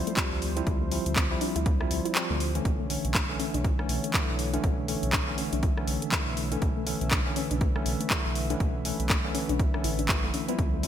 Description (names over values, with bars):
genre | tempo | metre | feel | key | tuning
deep house | 121 BPM | 4/4 | swing 59% on 16ths | unclear | A4 = 440 Hz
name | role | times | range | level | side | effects
warm analog pad | sustained chords | 0.0-10.9 s | D3 to E5 | -39 LUFS | right 1 dB | chorus, sidechain pumping
tine electric piano | stabs | 0.0-10.9 s | D3 to G4 | -32 LUFS | equal | medium stereo tremolo, sidechain pumping, digital delay
round analog bass | bass | 0.0-10.9 s | F#1 to D2 | -32 LUFS | equal | tube saturation, sidechain pumping
soft round pluck | arpeggios | 0.1-10.8 s | A3 to F4 | -37 LUFS | left 5 dB | chorus, sidechain pumping, ping-pong delay
house drum kit | drums | 0.1-10.9 s | handclaps, hi-hat, rim click | -30 LUFS | equal | studio reverb, gated reverb
electronic kick drum | drums | 0.2-10.7 s | none | -29 LUFS | equal | overdrive, studio reverb
room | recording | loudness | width
light reverb, digital ambience | bright 1980s-style digital production | -25 LUFS | side -10 dB against mid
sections
0.0-10.9 A section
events
kick drops out 2.2-2.7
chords
0.0 Dm11; 2.7 Bm11